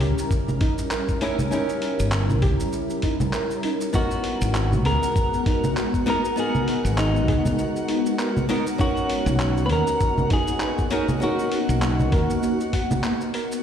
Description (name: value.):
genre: sunset chillout.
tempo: 99 BPM.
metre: 4/4.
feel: swing 58% on 16ths.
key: unclear.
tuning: A4 = 441 Hz.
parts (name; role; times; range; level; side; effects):
flamenco guitar; accompaniment; 0.0-13.3 s; B3 to A#4; -29 LUFS; equal; auto-pan, ping-pong delay.
shimmering ambient pad; sustained chords; 0.0-13.6 s; G3 to A#4; -28 LUFS; left 2 dB; chorus, built-in reverb, phaser.
soft round pluck; arpeggios; 0.0-13.5 s; D#4 to F#5; -31 LUFS; right 2 dB; chorus, ping-pong delay.
woody fretless electric bass; bass; 0.0-12.2 s; G1 to D#2; -22 LUFS; equal; none.
dusty soul sampler-style drum kit; drums; 0.0-13.6 s; cabasa, congas, handclaps, hi-hat; -28 LUFS; right 1 dB; none.
electronic kick drum; drums; 0.3-12.9 s; none; -24 LUFS; equal; none.
twinkling granular texture; texture; 4.7-13.6 s; F#4 to F#5; -35 LUFS; right 2 dB; built-in reverb.
clean electric guitar; melody; 4.0-13.0 s; D#4 to B4; -27 LUFS; equal; vintage 12-bit sampler grit, tape echo.
room: moderate concert hall reverb, RT60 2.3 s.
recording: played on a big sound system in a bare room, stone room reverb.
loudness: -20 LUFS.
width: side -8 dB against mid.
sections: 0.0-13.6 A section.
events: none.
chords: 0.0 D#7b9; 3.9 G#m9; 8.8 Bmaj7.